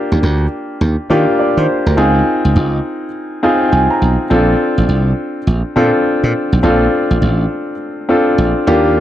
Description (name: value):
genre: R&B, new jack swing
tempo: 103 BPM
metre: 4/4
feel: swing 62% on 16ths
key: Bb major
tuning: A4 = 440 Hz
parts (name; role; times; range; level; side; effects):
- warm concert grand piano; accompaniment; 0.0-9.0 s; Bb3 to Bb5; -14 LUFS; left 1 dB; none
- slap bass; bass; 0.1-9.0 s; A1 to Eb3; -14 LUFS; right 1 dB; none
room: moderate echo chamber reverb, RT60 1.5 s, small room ambience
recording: dark, warm production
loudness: -12 LUFS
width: side -12 dB against mid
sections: 0.0-9.0 A section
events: grand piano fill 3.1-4.3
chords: 0.0 Ebmaj9; 2.0 Dbmaj7; 4.3 Bbmaj7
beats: 0.22 0.81 1.39 | 1.97 2.55 3.14 3.72 | 4.30 4.88 5.47 6.05 | 6.63 7.21 7.80 8.38 | 8.96